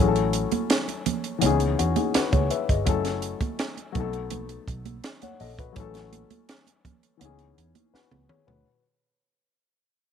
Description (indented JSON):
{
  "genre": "lush 1970s-style soul",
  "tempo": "83 BPM",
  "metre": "4/4",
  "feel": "straight",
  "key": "C# minor",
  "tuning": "A4 = 441 Hz",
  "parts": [
    { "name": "dark baby grand piano", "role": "accompaniment", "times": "0.0-8.8 s", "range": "E3 to F#5", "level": "-27 LUFS", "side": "left 10 dB", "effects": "none" },
    { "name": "vintage muted fingered electric bass", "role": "bass", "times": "0.0-8.6 s", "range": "F#1 to E2", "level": "-28 LUFS", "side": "right 1 dB", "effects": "none" },
    { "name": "compact cocktail drum kit", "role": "drums", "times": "0.2-8.6 s", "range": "hi-hat, kick drum, snare drum, toms", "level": "-25 LUFS", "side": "right 2 dB", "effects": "none" },
    { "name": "congas", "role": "percussion", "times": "0.5-8.3 s", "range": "none", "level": "-31 LUFS", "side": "right 13 dB", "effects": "none" }
  ],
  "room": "light reverb, small room ambience",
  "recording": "1960s-style stereo with parts hard left and right",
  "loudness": "-23 LUFS",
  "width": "side -8 dB against mid",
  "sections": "0.0-8.7 A section",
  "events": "fade-out 0.0-8.7; drum fill 7.9-8.7",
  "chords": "0.0 A6; 1.4 C#m9; 2.9 F#m7; 4.0 B7; 5.8 A6; 7.2 C#m9"
}